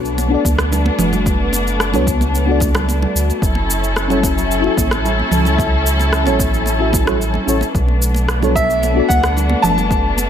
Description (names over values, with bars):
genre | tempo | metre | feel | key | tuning
sunset chillout | 111 BPM | 4/4 | straight | B minor | A4 = 436 Hz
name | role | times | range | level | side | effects
mellow FM electric piano | accompaniment | 0.0-10.3 s | B3 to E5 | -21 LUFS | moving between left 6 dB and right 5 dB | chorus, phaser, auto-pan, tape echo
muted studio string section | sustained chords | 0.0-10.3 s | F#3 to A4 | -20 LUFS | left 1 dB | none
warm sub bass | bass | 0.0-10.3 s | F#1 to D2 | -18 LUFS | equal | none
electronic cabasa, rim click and congas | drums | 0.1-10.3 s | none | -22 LUFS | right 1 dB | none
congas | percussion | 0.2-10.3 s | none | -26 LUFS | right 4 dB | none
electronic kick drum | drums | 0.4-10.0 s | none | -20 LUFS | equal | none
bright concert grand piano | melody | 8.6-10.3 s | E5 to A5 | -17 LUFS | right 1 dB | ping-pong delay
room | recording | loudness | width
light reverb | none | -13 LUFS | side -9 dB against mid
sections
0.0-10.3 A section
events
none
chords
0.0 Bm7; 3.4 F#m7; 7.7 Bm7